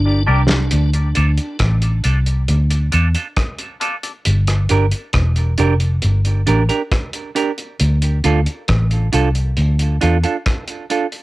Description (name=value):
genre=dub reggae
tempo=68 BPM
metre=4/4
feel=straight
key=D minor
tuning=A4 = 440 Hz
part: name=vintage muted fingered electric bass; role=bass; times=0.0-10.2 s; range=E1 to E2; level=-15 LUFS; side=equal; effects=none
part: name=semi-hollow electric guitar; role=accompaniment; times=0.3-11.1 s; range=D4 to Bb4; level=-22 LUFS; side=right 5 dB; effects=high-pass filter, cassette tape, dub echo
part: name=percussive organ stab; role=stabs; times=0.3-4.1 s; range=D4 to D5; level=-27 LUFS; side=left 7 dB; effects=chorus, high-pass filter, cassette tape, dub echo
part: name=cloth-damped thuddy drum kit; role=drums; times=0.5-11.2 s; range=hi-hat, kick drum, rim click, snare drum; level=-21 LUFS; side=equal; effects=cassette tape
room=light reverb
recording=home recording on cassette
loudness=-15 LUFS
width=side -18 dB against mid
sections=0.7-11.2 A section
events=drum fill 0.0-0.7; filter sweep 0.0-4.3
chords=0.0 Gm; 0.7 Dm; 4.3 Gm; 7.8 Dm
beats=| 0.71 1.59 2.48 3.37 | 4.25 5.14 6.02 6.91 | 7.80 8.68 9.57 10.46